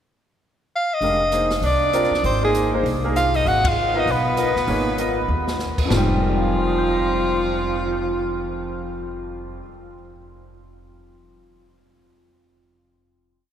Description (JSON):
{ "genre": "modal jazz", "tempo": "196 BPM", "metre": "4/4", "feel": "swing 61% on 8ths", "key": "F dorian", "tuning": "A4 = 440 Hz", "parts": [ { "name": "breathy soprano saxophone", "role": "melody", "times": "0.8-9.1 s", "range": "F4 to Gb5", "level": "-22 LUFS", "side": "left 1 dB", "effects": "none" }, { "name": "clear grand piano", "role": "accompaniment", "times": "1.0-10.2 s", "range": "F2 to Bb6", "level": "-25 LUFS", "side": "equal", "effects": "none" }, { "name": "upright bass", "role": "bass", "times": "1.0-9.6 s", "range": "F1 to Eb2", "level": "-26 LUFS", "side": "equal", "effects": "none" }, { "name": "open jazz drum kit", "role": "drums", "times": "1.0-6.0 s", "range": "crash cymbal, hi-hat, kick drum, ride cymbal, rim click, snare drum, toms", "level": "-28 LUFS", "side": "equal", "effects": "none" }, { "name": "clear tenor saxophone", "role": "second line", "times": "1.6-9.1 s", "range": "F3 to Gb4", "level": "-27 LUFS", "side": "right 2 dB", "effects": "none" } ], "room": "wet cathedral reverb, RT60 5.4 s", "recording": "recorded in a church or concert hall", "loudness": "-18 LUFS", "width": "side -9 dB against mid", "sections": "0.0-1.0 pickup bar; 1.0-5.9 A section; 5.9-8.4 final chord", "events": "band accent 3.6; drum fill 5.3-5.6", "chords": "0.0 N.C.; 1.0 Fm7; 3.5 Abmadd9; 5.9 Fm9" }